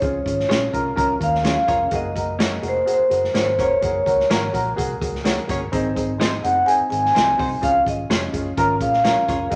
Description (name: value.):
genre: uptempo 1960s-style soul.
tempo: 126 BPM.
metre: 4/4.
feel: straight.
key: unclear.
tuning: A4 = 439 Hz.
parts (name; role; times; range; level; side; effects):
vibraphone with medium mallets; melody; 0.0-9.6 s; C5 to Ab5; -22 LUFS; equal; none.
warm upright piano; accompaniment; 0.0-9.6 s; Bb3 to Bb4; -27 LUFS; equal; none.
vintage muted fingered electric bass; bass; 0.0-9.6 s; F1 to Eb2; -32 LUFS; equal; none.
vintage drum kit; drums; 0.0-9.6 s; hi-hat, kick drum, snare drum; -28 LUFS; equal; none.
semi-hollow electric guitar; stabs; 0.5-9.4 s; Bb3 to Db5; -32 LUFS; equal; none.
room: wet large studio reverb, RT60 1.4 s.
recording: none.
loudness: -20 LUFS.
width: mono.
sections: 0.0-9.6 A section.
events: none.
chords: 0.0 Db; 1.9 Gbadd9; 5.7 Ab; 7.6 Db.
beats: | 0.01 0.49 0.97 1.45 | 1.92 2.40 2.88 3.36 | 3.83 4.31 4.79 5.26 | 5.74 6.21 6.68 7.16 | 7.63 8.11 8.58 9.05 | 9.52.